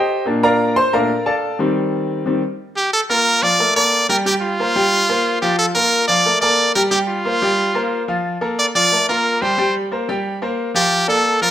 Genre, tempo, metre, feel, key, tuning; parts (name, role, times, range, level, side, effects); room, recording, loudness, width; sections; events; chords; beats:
latin; 180 BPM; 4/4; straight; Bb major; A4 = 440 Hz
bright grand piano; accompaniment; 0.0-11.5 s; Bb2 to C6; -18 LUFS; left 1 dB
brilliant trumpet; melody; 2.8-11.5 s; F4 to D5; -15 LUFS; right 1 dB
moderate large studio reverb, RT60 1.2 s; -15 LUFS; side -11 dB against mid
0.0-2.9 A section; 2.9-11.5 B section
grand piano solo 0.0-2.9
0.3 Bbmaj7; 1.6 Eb6; 2.9 Bbmaj7; 4.3 Fsus24; 5.6 Bbmaj7; 6.9 Fsus24; 8.2 Bbmaj7; 9.6 Fsus24; 10.9 Bbmaj7
| 0.26 0.60 0.93 1.26 | 1.60 1.93 2.26 2.60 | 2.93 3.26 3.59 3.93 | 4.26 4.59 4.92 5.26 | 5.59 5.92 6.25 6.59 | 6.92 7.25 7.58 7.92 | 8.25 8.58 8.91 9.25 | 9.58 9.91 10.25 10.58 | 10.91 11.24